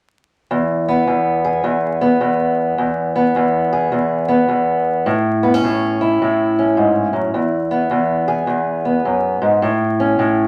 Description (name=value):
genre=blues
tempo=105 BPM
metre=4/4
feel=swing 64% on 8ths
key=E major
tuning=A4 = 439 Hz
part: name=fingerpicked steel-string acoustic guitar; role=solo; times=0.5-10.5 s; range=E2 to G#4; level=-17 LUFS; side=equal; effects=none
room=wet club reverb, RT60 0.5 s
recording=vinyl crackle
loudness=-17 LUFS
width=mono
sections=0.5-10.5 A section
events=none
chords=0.5 E; 5.1 A; 7.3 E; 9.6 A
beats=| 0.51 1.08 1.65 2.22 | 2.79 3.35 3.92 4.49 | 5.06 5.63 6.20 6.77 | 7.34 7.91 8.48 9.05 | 9.62 10.19